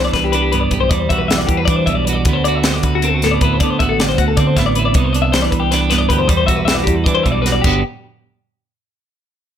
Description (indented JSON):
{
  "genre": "math rock and midwest emo",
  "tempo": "313 BPM (eighths)",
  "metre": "7/8",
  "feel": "straight",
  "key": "G major",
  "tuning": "A4 = 440 Hz",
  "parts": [
    { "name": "clean electric guitar", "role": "accompaniment", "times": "0.0-7.8 s", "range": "D2 to G4", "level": "-18 LUFS", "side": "right 6 dB", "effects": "none" },
    { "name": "twelve-string electric guitar", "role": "arpeggios", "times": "0.0-7.8 s", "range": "F#4 to E5", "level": "-18 LUFS", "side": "left 7 dB", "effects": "none" },
    { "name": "growling fingered electric bass", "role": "bass", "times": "0.0-7.8 s", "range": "G1 to E3", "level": "-20 LUFS", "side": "equal", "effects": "overdrive" },
    { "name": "crisp fusion drum kit", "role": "drums", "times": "0.1-7.7 s", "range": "crash cymbal, hi-hat, kick drum, snare drum", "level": "-18 LUFS", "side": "equal", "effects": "none" }
  ],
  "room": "light reverb",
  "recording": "none",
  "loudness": "-13 LUFS",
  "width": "side -9 dB against mid",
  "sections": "0.0-7.6 A section; 7.6-9.0 B section",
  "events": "none",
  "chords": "0.0 Cmaj9; 0.9 Em9; 2.3 D13; 5.0 Cmaj9; 6.3 Em9; 7.6 G",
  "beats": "0.15 0.34 0.53 0.73 | 0.92 1.11 1.30 1.50 1.69 1.88 2.07 | 2.27 2.46 2.65 2.84 3.03 3.23 3.42 | 3.61 3.80 3.99 4.18 4.38 4.57 4.76 | 4.95 5.14 5.33 5.53 5.72 5.91 6.10 | 6.29 6.48 6.68 6.87 7.06 7.25 7.44 | 7.63 7.83"
}